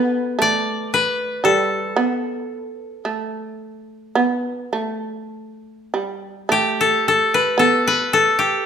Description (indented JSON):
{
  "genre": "japanese traditional, Japanese chamber music",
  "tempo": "49-61 BPM",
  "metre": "4/4",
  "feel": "rubato",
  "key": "unclear",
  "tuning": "A4 = 439 Hz",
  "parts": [
    { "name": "koto", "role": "melody", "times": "0.0-8.7 s", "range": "G4 to D5", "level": "-17 LUFS", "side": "left 2 dB", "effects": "none" },
    { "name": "shamisen", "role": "second line", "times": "0.0-8.6 s", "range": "G3 to B3", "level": "-22 LUFS", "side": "right 3 dB", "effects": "none" }
  ],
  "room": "moderate recital hall reverb, RT60 1.4 s",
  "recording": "minimal, uncompressed stereo recording",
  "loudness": "-17 LUFS",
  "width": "side -7 dB against mid",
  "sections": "0.0-6.5 A section; 6.5-8.7 B section",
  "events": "none",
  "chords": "none"
}